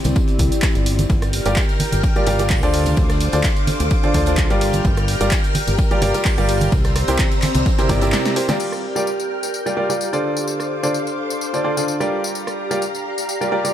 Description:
piano house; 128 BPM; 4/4; swing 54% on 16ths; G dorian; A4 = 441 Hz
tambourine and congas; percussion; 0.0-8.6 s; -27 LUFS; right 2 dB
airy breathy pad; texture; 0.0-13.7 s; C4 to Bb5; -27 LUFS; left 1 dB; chorus, sidechain pumping
modern bright fingered electric bass; bass; 0.1-8.1 s; G1 to D2; -21 LUFS; equal; sidechain pumping
punchy analog drum machine; drums; 0.1-13.7 s; crash cymbal, handclaps, hi-hat, rim click, snare drum, tambourine; -26 LUFS; equal; overdrive
vintage drum kit; drums; 0.1-8.5 s; hi-hat, ride cymbal, snare drum; -35 LUFS; left 2 dB
electronic kick drum; drums; 0.2-8.0 s; -19 LUFS; equal; overdrive
string machine, violins; sustained chords; 1.1-13.7 s; G4 to F6; -27 LUFS; equal; ensemble chorus, sidechain pumping
clear grand piano; riff; 1.5-13.7 s; C3 to D5; -21 LUFS; equal; sidechain pumping, ping-pong delay
light reverb, small room ambience; -16 LUFS; side -10 dB against mid
0.0-8.6 A section; 8.6-13.7 B section
drum fill 7.9-8.6
0.0 C; 1.1 Gm7; 6.7 C7; 8.6 Dm7; 12.1 Gm7
0.16 0.63 | 1.10 1.57 2.04 2.50 | 2.97 3.44 3.91 4.38 | 4.85 5.32 5.79 6.25 | 6.72 7.19 7.66 8.13 | 8.60 9.07 9.54 10.00 | 10.47 10.94 11.41 11.88 | 12.35 12.82 13.29

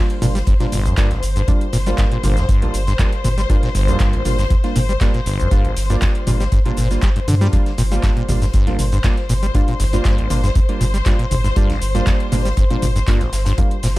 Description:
acid house; 119 BPM; 4/4; straight; G minor; A4 = 441 Hz
warm studio string section; sustained chords; 0.0-14.0 s; C5; -28 LUFS; left 4 dB; sidechain pumping
deep mellow chord stab; stabs; 0.0-14.0 s; G3 to F4; -25 LUFS; right 3 dB; chorus, tape echo
electro analog drum machine; drums; 0.1-14.0 s; handclaps, hi-hat, shaker, toms; -27 LUFS; equal
acid bass, saw; riff; 0.2-14.0 s; G1 to G3; -21 LUFS; equal
round analog bass; bass; 0.2-14.0 s; G1 to G2; -19 LUFS; equal; sidechain pumping
big rock drum kit; drums; 0.2-14.0 s; hi-hat, snare drum; -38 LUFS; left 2 dB
electronic kick drum; drums; 0.5-13.7 s; -17 LUFS; equal
light reverb; dark, warm production; -15 LUFS; side -18 dB against mid
0.0-14.0 A section
0.0 Gm7
0.47 0.98 | 1.48 1.98 2.49 2.99 | 3.50 4.00 4.50 5.01 | 5.51 6.02 6.52 7.03 | 7.53 8.03 8.54 9.04 | 9.55 10.05 10.56 11.06 | 11.56 12.07 12.57 13.08 | 13.58

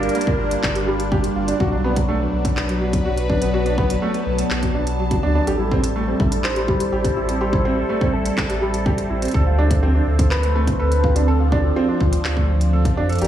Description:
IDM; 124 BPM; 4/4; straight; A4 = 440 Hz
phased analog pad; sustained chords; 0.0-13.3 s; F3 to A5; -23 LUFS; equal; phaser, chorus, vintage 12-bit sampler grit
warm sub bass; bass; 0.0-13.3 s; F#1 to F2; -21 LUFS; equal
industrial drum kit; drums; 0.0-13.3 s; handclaps, hi-hat; -28 LUFS; equal
felt-muted upright piano; arpeggios; 0.1-13.3 s; F#3 to A4; -24 LUFS; right 2 dB; low-pass filter, diffuse ambient delay
electronic kick drum; drums; 0.3-12.9 s; -22 LUFS; equal
soft struck synth lead; melody; 5.5-13.3 s; F4 to C5; -27 LUFS; equal; chorus, cassette tape, diffuse ambient delay
moderate plate reverb, RT60 1.3 s; dreamy mix soaked in reverb, small room ambience; -17 LUFS; side -11 dB against mid
0.0-13.3 A section
0.0 Gm7; 1.6 Bm7; 5.5 Am7; 9.3 Dm7
0.15 0.63 1.12 | 1.60 2.09 2.57 3.05 | 3.54 4.02 4.50 4.99 | 5.47 5.96 6.44 6.92 | 7.41 7.89 8.38 8.86 | 9.34 9.83 10.31 10.80 | 11.28 11.76 12.25 12.73 | 13.21

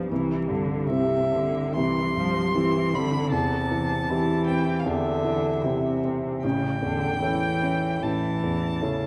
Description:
classical, slow romantic movement for piano trio; 76 BPM; 4/4; rubato; C major; A4 = 441 Hz
warm cello; second line; 0.0-9.1 s; C3 to F3; -30 LUFS; equal
warm grand piano; accompaniment; 0.0-9.1 s; A1 to A4; -28 LUFS; equal
rich violin; melody; 0.9-9.1 s; E5 to C6; -31 LUFS; equal
moderate concert hall reverb, RT60 2.3 s; dark, warm production, vinyl crackle; -25 LUFS; mono
0.0-9.1 A section
0.1 C; 3.3 C/E; 6.4 A7
| 0.11 0.89 1.75 2.55 | 3.33 4.10 4.86 5.65 | 6.43 7.22 8.03 8.83

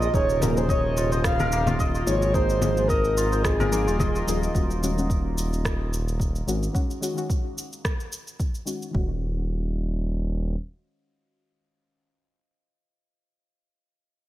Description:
organic downtempo; 109 BPM; 4/4; swing 54% on 16ths; Eb dorian; A4 = 440 Hz
breathy flute-like synth lead; melody; 0.0-4.3 s; Ab4 to F5; -26 LUFS; equal; lush chorus, digital delay
deep mellow chord stab; accompaniment; 0.0-12.6 s; Eb3 to Ab4; -32 LUFS; left 3 dB; chorus, vintage 12-bit sampler grit, sidechain pumping, digital delay
warm analog pad; sustained chords; 0.0-4.5 s; C3 to Eb5; -37 LUFS; equal
santur; arpeggios; 0.0-8.0 s; Bb3 to Eb5; -31 LUFS; equal; digital delay
smooth synth bass; bass; 0.0-10.6 s; Eb1 to Ab1; -26 LUFS; equal
electronic cabasa, congas and rim click; drums; 0.0-8.9 s; -31 LUFS; left 1 dB
electronic kick drum; drums; 0.1-9.1 s; -26 LUFS; equal
light reverb; -22 LUFS; side -14 dB against mid
0.0-4.5 A section; 4.5-8.9 B section; 8.9-11.1 C section
0.0 Fm/Eb; 4.5 Ebm7
| 0.14 0.69 1.24 1.79 | 2.34 2.89 3.44 3.99 | 4.54 5.09 5.64 6.20 | 6.75 7.30 7.85 8.40 | 8.95 9.50 10.05 10.60

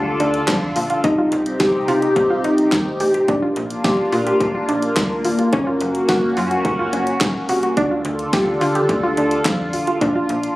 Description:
synth-pop; 107 BPM; 4/4; straight; A4 = 438 Hz
phased analog pad; sustained chords; 0.0-10.6 s; C3 to A4; -21 LUFS; left 1 dB; phaser, chorus
slap-like FM bass; bass; 0.0-10.5 s; Eb1 to D3; -26 LUFS; equal
soft round pluck; arpeggios; 0.1-10.3 s; Db4 to G4; -20 LUFS; equal; chorus, slapback echo
pop drum kit; drums; 0.2-10.6 s; handclaps, hi-hat, kick drum, snare drum; -23 LUFS; equal
moderate plate reverb, RT60 1.9 s; recorded on a phone in the room, club reverb; -16 LUFS; side -18 dB against mid
0.0-10.6 A section
0.0 Dm; 1.0 Cm; 3.3 Bb; 5.5 Gb; 7.8 Dm; 10.0 Bb
0.48 | 1.04 1.60 2.16 2.72 | 3.28 3.85 4.41 4.97 | 5.53 6.09 6.65 7.21 | 7.77 8.33 8.89 9.45 | 10.01

